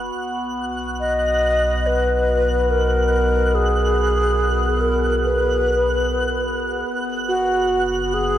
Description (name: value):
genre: ambient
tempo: 72 BPM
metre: 4/4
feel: straight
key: B major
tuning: A4 = 440 Hz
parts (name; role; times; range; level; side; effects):
- round analog bass; bass; 0.0-8.4 s; F#1 to B1; -23 LUFS; equal; none
- overtone-sweeping drone; drone; 0.0-8.4 s; B3 to F#4; -27 LUFS; equal; chorus, built-in reverb
- twinkling granular texture; texture; 0.0-8.4 s; F#6; -28 LUFS; right 2 dB; built-in reverb
- alto flute; melody; 1.0-8.4 s; F#4 to D#5; -19 LUFS; equal; ping-pong delay
room: wet huge ambient reverb, RT60 7.9 s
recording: worn, warbling old tape, cassette tape, warbly pitch drift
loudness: -17 LUFS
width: side -11 dB against mid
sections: 0.0-8.4 A section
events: fade-in on synth texture 0.0-8.4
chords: 0.1 B5; 6.9 N.C.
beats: | 0.14 1.00 1.85 2.69 | 3.53 4.38 5.21 6.04 | 6.87 7.70